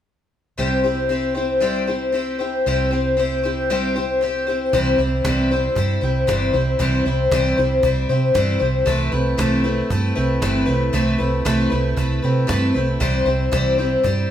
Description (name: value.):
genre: folk rock and heartland rock.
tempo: 116 BPM.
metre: 4/4.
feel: straight.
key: C major.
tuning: A4 = 440 Hz.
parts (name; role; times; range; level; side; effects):
picked twelve-string acoustic guitar; accompaniment; 0.6-14.3 s; C3 to C5; -18 LUFS; left 2 dB; none.
hollow-body short-scale fingered electric bass; bass; 0.6-14.3 s; G1 to C3; -22 LUFS; right 2 dB; none.
cajon; drums; 4.7-14.2 s; none; -29 LUFS; right 2 dB; none.
room: moderate large studio reverb, RT60 1.4 s.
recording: band playing live in one room.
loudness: -17 LUFS.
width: side -10 dB against mid.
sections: 0.6-4.7 A section; 4.7-14.3 B section.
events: none.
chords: 0.6 C; 8.9 Amadd9; 13.0 C.